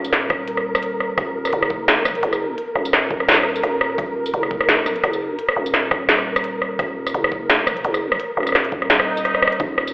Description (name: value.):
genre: half-time drum and bass.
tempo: 171 BPM.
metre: 4/4.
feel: swing 55% on 16ths, half-time.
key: Eb minor.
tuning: A4 = 440 Hz.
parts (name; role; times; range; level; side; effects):
growling 808-style bass; bass; 0.0-9.9 s; Eb1 to Gb1; -26 LUFS; equal; none.
industrial drum kit; drums; 0.0-9.9 s; hi-hat, rim click, snare drum, tambourine; -18 LUFS; equal; none.
flickering grainy texture; texture; 0.0-9.9 s; Gb3 to Bb4; -26 LUFS; equal; built-in reverb.
electronic kick drum; drums; 0.3-9.7 s; none; -32 LUFS; equal; overdrive.
swell; sound effects; 9.0-9.6 s; none; -24 LUFS; equal; none.
kalimba; arpeggios; 9.6-9.8 s; Eb4; -29 LUFS; equal; none.
room: moderate echo chamber reverb, RT60 2.2 s.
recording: played on a big sound system in a bare room, large studio reverb, telephone sound.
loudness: -17 LUFS.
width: side -25 dB against mid.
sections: 0.0-9.9 A section.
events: swell 9.0-9.6; drum fill 9.2-9.6.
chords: 0.0 Ebm.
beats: 0.13 0.48 0.83 | 1.18 1.53 1.88 2.23 | 2.58 2.93 3.28 3.63 | 3.98 4.34 4.69 5.04 | 5.39 5.74 6.09 6.44 | 6.79 7.14 7.49 7.84 | 8.20 8.55 8.90 9.25 | 9.60.